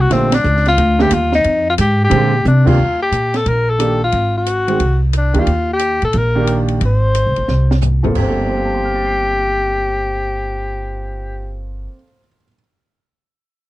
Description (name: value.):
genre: jazz, small-group swing and bop.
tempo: 179 BPM.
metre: 4/4.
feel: swing 64% on 8ths.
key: G minor.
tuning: A4 = 441 Hz.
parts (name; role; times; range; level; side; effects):
warm tenor saxophone; melody; 0.0-11.6 s; C4 to C5; -17 LUFS; left 2 dB; none.
upright bass; bass; 0.0-11.9 s; Gb1 to C3; -16 LUFS; equal; none.
warm upright piano; accompaniment; 0.1-12.6 s; G2 to C7; -20 LUFS; right 3 dB; none.
open jazz drum kit; drums; 0.1-8.3 s; crash cymbal, hi-hat, kick drum, ride cymbal, snare drum, toms; -24 LUFS; equal; none.
room: little or no reverb.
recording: dry, close 1970s-style studio recording.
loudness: -13 LUFS.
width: side -16 dB against mid.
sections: 0.0-2.8 A section; 2.8-8.2 B section; 8.2-10.8 C section.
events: band accent 0.3, 2.6; drum fill 2.5-2.8, 7.5-8.2.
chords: 0.1 Gm9; 1.4 Fm; 2.1 Bb13; 2.8 Ebmaj7; 4.1 Ab7; 5.5 Ebmaj7; 6.8 Ab; 8.2 Gm11.